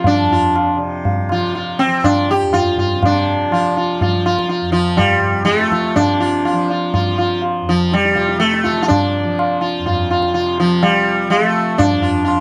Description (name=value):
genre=indian classical, Hindustani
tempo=123 BPM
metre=3/4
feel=straight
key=F raga bhupali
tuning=A4 = 441 Hz
part: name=sitar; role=melody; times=0.0-12.4 s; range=F3 to G4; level=-18 LUFS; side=equal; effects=none
part: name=tanpura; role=drone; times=0.0-12.4 s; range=F2 to F3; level=-26 LUFS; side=equal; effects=none
part: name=tabla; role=percussion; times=0.0-12.4 s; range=none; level=-22 LUFS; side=equal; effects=none
room=light reverb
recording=cassette tape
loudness=-16 LUFS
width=mono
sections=0.0-6.0 A section; 6.0-12.4 B section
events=none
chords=none